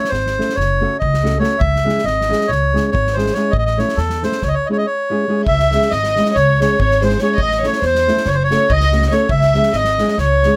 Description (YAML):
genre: balkan folk, Balkan wedding band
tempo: 281 BPM (eighths)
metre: 9/8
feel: straight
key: C# harmonic minor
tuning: A4 = 441 Hz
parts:
  - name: accordion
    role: melody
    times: 0.0-10.6 s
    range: A4 to E5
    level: -20 LUFS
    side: equal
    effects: none
  - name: flamenco guitar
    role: accompaniment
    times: 0.0-10.6 s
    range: G#3 to A4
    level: -22 LUFS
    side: equal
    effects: none
  - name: unplugged drum kit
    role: percussion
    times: 0.0-10.5 s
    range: kick drum, snare drum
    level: -27 LUFS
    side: equal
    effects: none
  - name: upright bass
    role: bass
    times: 0.1-10.4 s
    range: F#1 to E2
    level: -21 LUFS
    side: equal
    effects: none
  - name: dark violin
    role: second line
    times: 5.5-10.6 s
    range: B#4 to E5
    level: -23 LUFS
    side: equal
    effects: none
room: light reverb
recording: close, detailed microphones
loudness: -16 LUFS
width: mono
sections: 0.0-5.5 A section; 5.5-10.6 A section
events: none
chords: 0.0 A; 0.5 F#m; 1.6 C#m; 3.5 A; 4.4 C#m; 7.4 A; 8.2 F#m; 9.3 C#m